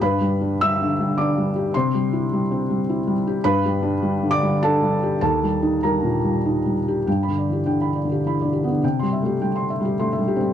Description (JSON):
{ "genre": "neoclassical minimalist piano", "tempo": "95-107 BPM", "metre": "3/4", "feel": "rubato", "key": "G major", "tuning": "A4 = 440 Hz", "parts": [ { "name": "felt-muted upright piano", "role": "solo", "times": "0.0-10.5 s", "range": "Eb2 to E6", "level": "-19 LUFS", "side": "equal", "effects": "none" } ], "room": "light reverb", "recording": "dark, warm production", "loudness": "-19 LUFS", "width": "side -10 dB against mid", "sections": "0.0-7.1 A section; 7.1-10.5 B section", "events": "none", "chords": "0.0 G; 1.7 C; 3.4 G; 5.2 Eb; 7.1 G; 8.8 C", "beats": "| 0.00 0.59 1.17 | 1.74 2.30 2.86 | 3.43 4.00 4.59 | 5.21 5.83 6.45 | 7.07 7.66 8.24 | 8.82 9.40 9.98" }